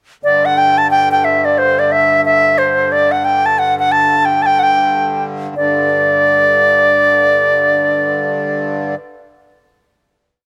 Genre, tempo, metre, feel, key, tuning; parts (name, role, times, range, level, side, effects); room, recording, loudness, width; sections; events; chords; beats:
celtic folk, Celtic hornpipe; 180 BPM; 4/4; swing 61% on 8ths; A4 = 440 Hz
bright reedy wooden flute; melody; 0.2-8.9 s; C5 to A5; -14 LUFS; equal
accordion; drone; 0.2-8.9 s; G2 to D3; -24 LUFS; equal; light tremolo tuning
moderate spring reverb, RT60 2.0 s; -13 LUFS; mono
0.2-5.6 A section; 5.6-8.2 final chord
0.2 G5
| 0.23 0.57 0.90 1.23 | 1.57 1.90 2.23 2.57 | 2.90 3.23 3.56 3.90 | 4.23 4.56 4.90 5.23 | 5.56 5.90 6.23 6.56 | 6.90 7.23 7.57 7.90